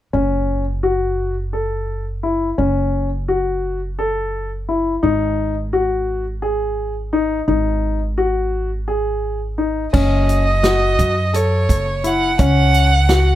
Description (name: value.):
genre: progressive instrumental, band music in an uneven meter.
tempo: 171 BPM (eighths).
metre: 7/8.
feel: straight.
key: F# dorian.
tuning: A4 = 440 Hz.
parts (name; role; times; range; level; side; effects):
warm concert grand piano; arpeggios; 0.1-13.4 s; C#4 to A4; -19 LUFS; left 2 dB; none.
upright bass; bass; 0.1-13.4 s; F#1 to F#2; -20 LUFS; equal; none.
warm violin; melody; 9.9-13.4 s; C#5 to F#5; -19 LUFS; right 2 dB; none.
natural country drum kit; drums; 9.9-13.3 s; crash cymbal, hi-hat, kick drum, snare drum; -22 LUFS; right 2 dB; none.
room: light reverb.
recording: none.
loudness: -16 LUFS.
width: side -13 dB against mid.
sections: 0.1-9.9 A section; 9.9-13.4 B section.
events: none.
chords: 0.1 F#m; 5.0 G#5; 9.9 F#m.